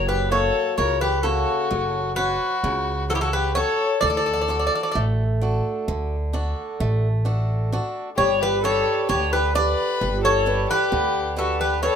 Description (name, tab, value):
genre	greek folk, Greek bouzouki band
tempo	130 BPM (eighths)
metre	9/8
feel	straight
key	D major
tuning	A4 = 441 Hz
part	Greek bouzouki	melody	0.0-12.0 s	G4 to D5	-22 LUFS	left 1 dB	none
part	rich violin	second line	0.0-12.0 s	E4 to B4	-25 LUFS	left 4 dB	none
part	picked swing-style acoustic guitar	accompaniment	0.0-12.0 s	C#3 to C#5	-28 LUFS	right 4 dB	none
part	upright bass	bass	0.0-11.9 s	F#1 to D2	-25 LUFS	equal	none
room	moderate small room ambience, RT60 0.5 s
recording	none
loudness	-20 LUFS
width	side -8 dB against mid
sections	0.0-12.0 A section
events	none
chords	0.0 F#; 4.0 D; 8.2 G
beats	0.30 0.77 1.24 1.70 2.17 2.63 3.10 3.56 | 4.02 4.49 4.95 5.41 5.87 6.33 6.79 7.25 7.71 | 8.17 8.63 9.09 9.54 10.00 10.46 10.91 11.37 11.82